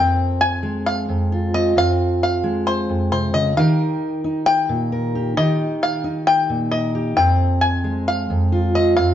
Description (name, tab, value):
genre	folk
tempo	133 BPM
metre	4/4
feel	straight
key	F minor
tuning	A4 = 445 Hz
part	bluegrass banjo	melody	0.0-9.1 s	C5 to Ab5	-20 LUFS	left 3 dB	none
part	fingerpicked steel-string acoustic guitar	accompaniment	0.0-9.1 s	F2 to Bb4	-19 LUFS	right 1 dB	none
room	moderate stone room reverb, RT60 1.2 s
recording	band playing live in one room, nothing above 7.6 kHz, faint mains hum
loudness	-17 LUFS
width	side -10 dB against mid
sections	0.0-9.1 A section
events	none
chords	0.0 Fm; 3.6 Ebadd9; 7.2 Fmadd9